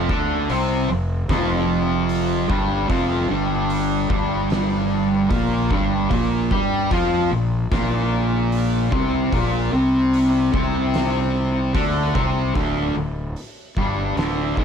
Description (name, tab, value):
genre	stoner and doom metal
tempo	75 BPM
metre	4/4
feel	straight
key	unclear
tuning	A4 = 440 Hz
part	fuzz guitar	riff	0.0-14.6 s	D2 to G4	-20 LUFS	equal	distortion
part	fuzz fingered electric bass	bass	0.0-14.6 s	D1 to G2	-25 LUFS	equal	overdrive
part	oversized low-tuned drum kit	drums	0.1-14.6 s	hi-hat, kick drum, snare drum	-27 LUFS	equal	none
room	small room ambience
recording	none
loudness	-18 LUFS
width	side -7 dB against mid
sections	0.0-12.5 A section; 12.5-14.6 B section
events	none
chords	0.0 F5; 6.1 Bb5; 12.5 N.C.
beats	0.49 1.29 2.09 | 2.90 3.70 4.50 5.31 | 6.11 6.91 7.72 8.52 | 9.32 10.13 10.93 11.74 | 12.55 13.35 14.16